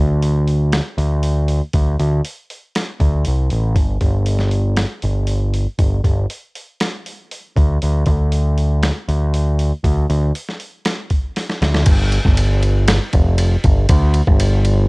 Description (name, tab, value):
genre	quiet-loud alternative rock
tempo	118 BPM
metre	4/4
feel	straight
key	unclear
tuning	A4 = 440 Hz
part	growling picked electric bass	bass	0.0-14.9 s	F1 to D2	-15 LUFS	equal	overdrive
part	boom bap sampler-style drum kit	drums	0.2-14.8 s	crash cymbal, hi-hat, kick drum, ride cymbal, snare drum	-18 LUFS	equal	cassette tape
room	little or no reverb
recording	home recording on cassette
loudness	-15 LUFS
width	side -34 dB against mid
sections	0.0-11.9 A section; 11.9-14.9 B section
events	drum fill 11.4-11.9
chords	none